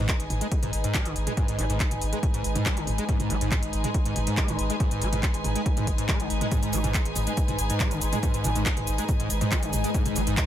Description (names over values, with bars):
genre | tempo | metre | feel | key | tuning
driving peak-time techno | 140 BPM | 4/4 | straight | G# minor | A4 = 441 Hz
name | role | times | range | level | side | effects
screaming distorted acid line | riff | 0.0-10.4 s | G#2 to G#3 | -31 LUFS | equal | distortion, ensemble chorus, sidechain pumping, tape echo
warm sub bass | bass | 0.0-10.4 s | G#1 | -30 LUFS | equal | overdrive, sidechain pumping, low-pass filter
overtone-sweeping drone | drone | 0.3-10.5 s | G#2 to G#3 | -34 LUFS | left 2 dB | chorus, built-in reverb, phaser, sidechain pumping
dark chamber string section | texture | 0.0-10.5 s | D#4 to G#5 | -33 LUFS | right 2 dB | sidechain pumping
electronic kick drum | drums | 0.1-10.5 s | none | -26 LUFS | equal | small room reverb
techno drum kit | drums | 0.1-10.5 s | handclaps, hi-hat, shaker, toms | -30 LUFS | equal | small room reverb
room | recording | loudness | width
light reverb | none | -23 LUFS | side -11 dB against mid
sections
0.0-10.5 A section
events
none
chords
0.0 G#m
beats
0.09 0.52 0.94 | 1.37 1.80 2.23 2.66 | 3.09 3.52 3.94 4.37 | 4.80 5.23 5.66 6.09 | 6.52 6.94 7.37 7.80 | 8.23 8.66 9.09 9.52 | 9.94 10.37